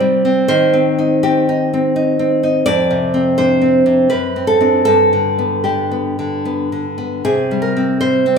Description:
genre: romantic piece for solo classical guitar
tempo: 75-85 BPM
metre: 3/4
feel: rubato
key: C minor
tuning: A4 = 440 Hz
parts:
  - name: nylon-string guitar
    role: solo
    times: 0.0-8.4 s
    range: F2 to D5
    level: -12 LUFS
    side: equal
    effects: none
room: wet recital hall reverb, RT60 1.4 s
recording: minimal, uncompressed stereo recording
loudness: -13 LUFS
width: side -6 dB against mid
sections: 0.0-8.4 A section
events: none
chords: 0.0 Cm; 0.5 Cm/Eb; 2.7 Dm7/F; 4.1 D7/F#; 4.9 G; 7.2 C5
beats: | 0.50 1.24 1.96 | 2.67 3.37 4.11 | 4.87 5.65 6.45 | 7.25 8.01

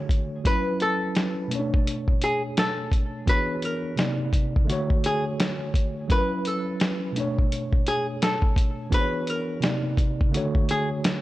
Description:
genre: lo-fi hip hop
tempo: 85 BPM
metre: 4/4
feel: swing 59% on 16ths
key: B dorian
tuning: A4 = 440 Hz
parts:
  - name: mellow tine electric piano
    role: accompaniment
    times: 0.0-11.2 s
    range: B2 to D5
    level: -28 LUFS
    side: equal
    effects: overdrive, fast stereo tremolo, cassette tape, low-pass filter
  - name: lo-fi sampler-style drum kit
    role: drums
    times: 0.1-11.2 s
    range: hi-hat, kick drum, snare drum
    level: -23 LUFS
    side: equal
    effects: vintage 12-bit sampler grit
  - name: archtop guitar, miked and amplified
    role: melody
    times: 0.5-10.9 s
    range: G#4 to B4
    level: -27 LUFS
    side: equal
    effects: low-pass filter
room: light reverb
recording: dry, gritty hardware recording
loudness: -22 LUFS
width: side -16 dB against mid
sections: 0.0-11.2 A section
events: none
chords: 0.4 F#7sus4; 1.5 Bm9; 3.3 E13; 4.0 Cm9; 4.7 Dmaj7; 6.1 F#7sus4; 7.2 Bm9; 8.9 E13; 9.6 Cm9; 10.3 Dmaj7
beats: | 0.45 1.16 1.86 2.57 | 3.27 3.98 4.68 5.39 | 6.10 6.80 7.51 8.21 | 8.92 9.62 10.33 11.04

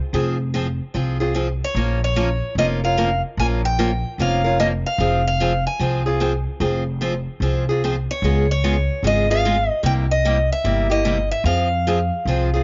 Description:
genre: acoustic string swing (jazz manouche)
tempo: 148 BPM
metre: 4/4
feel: swing 64% on 8ths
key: F minor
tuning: A4 = 440 Hz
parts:
  - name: picked steel-string acoustic guitar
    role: accompaniment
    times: 0.1-12.6 s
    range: C3 to Bb4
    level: -25 LUFS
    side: equal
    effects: none
  - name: upright bass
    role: bass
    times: 0.1-12.6 s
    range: F1 to F2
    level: -24 LUFS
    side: equal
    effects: none
  - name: picked steel-string acoustic guitar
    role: melody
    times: 1.6-12.6 s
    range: Db5 to Ab5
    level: -24 LUFS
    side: equal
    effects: none
room: light reverb, small room ambience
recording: nothing above 7.5 kHz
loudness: -20 LUFS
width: mono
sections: 0.0-12.6 A section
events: none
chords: 0.0 Fm; 1.8 Bbm; 5.0 Fm; 8.2 Db7; 9.8 C7#9; 11.5 Fm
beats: | 0.14 0.55 0.95 1.35 | 1.76 2.16 2.56 2.97 | 3.37 3.78 4.18 4.58 | 4.99 5.39 5.80 6.20 | 6.60 7.01 7.41 7.82 | 8.22 8.62 9.03 9.43 | 9.84 10.24 10.64 11.05 | 11.45 11.86 12.26

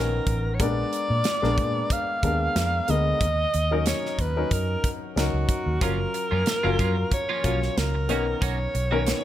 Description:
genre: polished 1980s jazz-funk pop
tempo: 92 BPM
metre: 4/4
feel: swing 54% on 16ths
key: F# major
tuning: A4 = 440 Hz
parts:
  - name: warm alto saxophone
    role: melody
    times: 0.0-9.2 s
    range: F#4 to E#5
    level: -27 LUFS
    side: equal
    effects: none
  - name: dark baby grand piano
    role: accompaniment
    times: 0.0-9.2 s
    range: D3 to A#4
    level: -29 LUFS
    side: left 4 dB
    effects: lush chorus
  - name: vintage muted fingered electric bass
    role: bass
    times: 0.0-9.1 s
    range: F#1 to A#2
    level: -26 LUFS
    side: equal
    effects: none
  - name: modern studio drum kit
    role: drums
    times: 0.3-9.2 s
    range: hi-hat, kick drum, snare drum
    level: -28 LUFS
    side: right 1 dB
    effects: none
  - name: twelve-string electric guitar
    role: riff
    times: 5.8-9.1 s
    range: D#3 to F#4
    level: -32 LUFS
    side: right 7 dB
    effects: wide subtle chorus
room: small room ambience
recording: none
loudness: -22 LUFS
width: side -12 dB against mid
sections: 0.0-9.2 A section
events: none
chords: 0.0 Bmaj9; 0.6 A#7b9; 3.2 D#m7; 5.8 F#maj7; 8.1 Bmaj9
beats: | 0.60 1.25 1.90 2.56 | 3.21 3.86 4.51 5.16 | 5.81 6.47 7.12 7.77 | 8.42 9.07

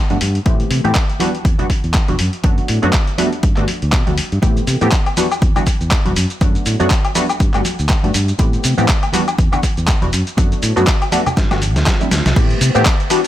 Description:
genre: filtered disco house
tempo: 121 BPM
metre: 4/4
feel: swing 57% on 16ths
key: unclear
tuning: A4 = 440 Hz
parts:
  - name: funky polysynth comp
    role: accompaniment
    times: 0.1-13.2 s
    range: E3 to G4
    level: -20 LUFS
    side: left 1 dB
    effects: chorus, phaser, sidechain pumping, low-pass filter
  - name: fingered electric bass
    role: bass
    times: 0.1-12.8 s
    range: E1 to C3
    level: -18 LUFS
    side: equal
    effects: sidechain pumping, low-pass filter
  - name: dusty soul sampler-style drum kit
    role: drums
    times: 0.1-13.3 s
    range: crash cymbal, handclaps, hi-hat, shaker, snare drum, woodblock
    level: -20 LUFS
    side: left 1 dB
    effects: overdrive, sidechain pumping on hats, sidechain pumping on perc, sidechain pumping on cymbals
  - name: congas and tube shaker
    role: percussion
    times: 0.1-12.3 s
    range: none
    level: -27 LUFS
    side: right 3 dB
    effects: none
  - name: electronic kick drum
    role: drums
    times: 0.5-13.0 s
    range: none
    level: -16 LUFS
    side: equal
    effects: overdrive
room: little or no reverb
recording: none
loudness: -13 LUFS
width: side -13 dB against mid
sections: 0.0-12.4 A section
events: drum fill 11.4-12.4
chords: 0.5 Am9; 1.2 Em9; 2.2 Bm7/F#; 3.2 Gmaj7; 4.4 Am9; 5.2 Em9; 6.2 Bm7/F#; 7.2 Gmaj7; 8.4 Am9; 9.1 Em9; 10.1 Bm7/F#; 11.1 Gmaj7; 11.9 D9sus4; 12.4 Am9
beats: | 0.46 0.96 1.45 1.95 | 2.44 2.94 3.44 3.93 | 4.43 4.92 5.42 5.92 | 6.41 6.91 7.40 7.90 | 8.39 8.89 9.39 9.88 | 10.38 10.87 11.37 11.87 | 12.36 12.86

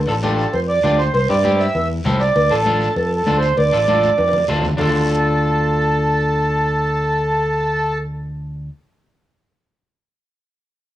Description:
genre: latin, cumbia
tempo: 197 BPM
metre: 4/4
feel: straight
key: D minor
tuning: A4 = 440 Hz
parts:
  - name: fingered electric bass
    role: bass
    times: 0.0-8.7 s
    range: A1 to G2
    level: -21 LUFS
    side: equal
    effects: none
  - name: accordion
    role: melody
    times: 0.1-8.0 s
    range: A4 to E5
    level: -18 LUFS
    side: right 2 dB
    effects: cassette tape, plate reverb
  - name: electric guitar at the edge of break-up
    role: accompaniment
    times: 0.1-8.7 s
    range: C4 to A4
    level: -23 LUFS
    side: left 1 dB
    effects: cassette tape, plate reverb
  - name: congas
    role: percussion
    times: 0.2-4.9 s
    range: none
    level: -27 LUFS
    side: left 3 dB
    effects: none
  - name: cowbell and timbales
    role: percussion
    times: 0.2-4.9 s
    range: none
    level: -25 LUFS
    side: left 1 dB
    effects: none
  - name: guiro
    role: percussion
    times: 0.2-4.9 s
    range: none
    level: -38 LUFS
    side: left 6 dB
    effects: none
room: moderate studio reverb, RT60 0.5 s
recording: home recording on cassette, small room ambience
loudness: -15 LUFS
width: side -13 dB against mid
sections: 0.0-4.8 A section; 4.8-7.2 B section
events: drum fill 4.0-4.8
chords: 0.0 Dm; 1.1 C; 2.4 Dm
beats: 0.23 0.54 0.84 | 1.14 1.45 1.75 2.05 | 2.36 2.66 2.96 3.27 | 3.57 3.88 4.18 4.48 | 4.79 5.09 5.40 5.70 | 6.00 6.31 6.61 6.92

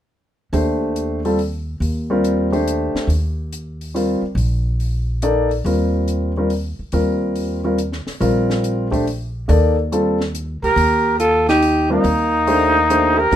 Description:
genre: modal jazz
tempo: 141 BPM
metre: 3/4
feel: swing 67% on 8ths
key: Eb lydian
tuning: A4 = 441 Hz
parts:
  - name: warm grand piano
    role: accompaniment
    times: 0.5-13.4 s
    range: F3 to D5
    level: -18 LUFS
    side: left 1 dB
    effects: none
  - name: upright bass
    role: bass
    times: 0.5-13.4 s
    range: Bb1 to Eb2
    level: -21 LUFS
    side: equal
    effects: none
  - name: compact cocktail drum kit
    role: drums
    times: 0.5-13.4 s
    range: hi-hat, kick drum, snare drum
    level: -31 LUFS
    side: left 1 dB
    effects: none
  - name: growling trumpet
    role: melody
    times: 10.6-13.4 s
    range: Eb4 to Bb4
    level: -15 LUFS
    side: left 1 dB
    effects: none
  - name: growling alto saxophone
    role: second line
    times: 10.6-13.4 s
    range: Bb3 to G4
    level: -21 LUFS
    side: right 4 dB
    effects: none
room: light reverb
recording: minimal, uncompressed stereo recording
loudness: -16 LUFS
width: side -11 dB against mid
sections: 0.5-10.8 A section; 10.8-13.4 B section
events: none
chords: 0.5 Ebmaj9; 10.8 Ebmaj7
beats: | 0.53 0.95 1.38 | 1.81 2.23 2.66 | 3.09 3.52 3.94 | 4.37 4.80 5.22 | 5.65 6.08 6.50 | 6.93 7.36 7.79 | 8.21 8.64 9.06 | 9.49 9.92 10.34 | 10.77 11.19 11.62 | 12.04 12.47 12.89 | 13.32

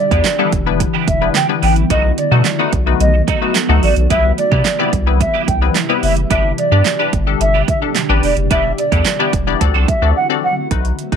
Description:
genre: dance-pop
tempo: 109 BPM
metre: 4/4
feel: straight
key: E minor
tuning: A4 = 439 Hz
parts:
  - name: mellow hollow silver concert flute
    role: melody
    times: 0.0-10.5 s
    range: D5 to G5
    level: -18 LUFS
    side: right 2 dB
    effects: sidechain pumping, slapback echo
  - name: shimmering ambient pad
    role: sustained chords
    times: 0.0-10.7 s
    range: B2 to G4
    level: -22 LUFS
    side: equal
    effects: chorus, built-in reverb, phaser, sidechain pumping
  - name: wavetable chord stab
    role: accompaniment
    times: 0.1-11.2 s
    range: G3 to D5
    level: -20 LUFS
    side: left 15 dB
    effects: sidechain pumping
  - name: twelve-string electric guitar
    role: riff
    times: 0.1-10.1 s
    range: E3 to A4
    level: -22 LUFS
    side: right 15 dB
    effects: ensemble chorus
  - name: round analog bass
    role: bass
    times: 0.1-11.2 s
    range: E1 to C3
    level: -15 LUFS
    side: equal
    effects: sidechain pumping
  - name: pop drum kit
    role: drums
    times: 0.1-11.2 s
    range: handclaps, hi-hat, kick drum, snare drum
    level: -19 LUFS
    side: right 4 dB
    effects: overdrive
room: light reverb, digital ambience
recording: 1960s-style stereo with parts hard left and right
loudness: -12 LUFS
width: side -7 dB against mid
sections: 0.0-10.7 A section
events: drop 0.0-10.7; break 10.2-10.7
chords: 0.0 Em7; 1.9 B7; 4.1 Cmaj7; 6.3 G; 8.5 Em7; 9.6 D7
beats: 0.25 0.80 1.35 | 1.90 2.45 3.00 3.55 | 4.11 4.66 5.21 5.76 | 6.31 6.86 7.41 7.96 | 8.51 9.06 9.61 10.16 | 10.71

